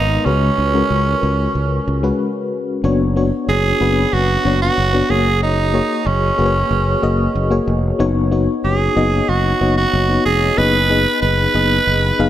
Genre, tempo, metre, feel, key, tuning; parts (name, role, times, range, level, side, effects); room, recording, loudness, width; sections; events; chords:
1980s-style pop; 93 BPM; 4/4; straight; A4 = 439 Hz
raspy tenor saxophone; melody; 0.0-12.3 s; C#4 to B4; -18 LUFS; right 4 dB; digital delay
FM electric piano with tremolo; accompaniment; 0.0-12.3 s; C#3 to E#5; -19 LUFS; left 4 dB
sustaining fretless electric bass; bass; 0.0-12.3 s; E#1 to C#2; -18 LUFS; equal
light reverb, studio reverb; -14 LUFS; side -12 dB against mid
0.0-2.8 A section; 2.8-12.3 B section
break 2.2-2.8
0.3 C#7sus4; 2.8 Bmadd9/F#; 5.1 F#add9; 8.0 Badd9/F#; 10.6 G#m/F#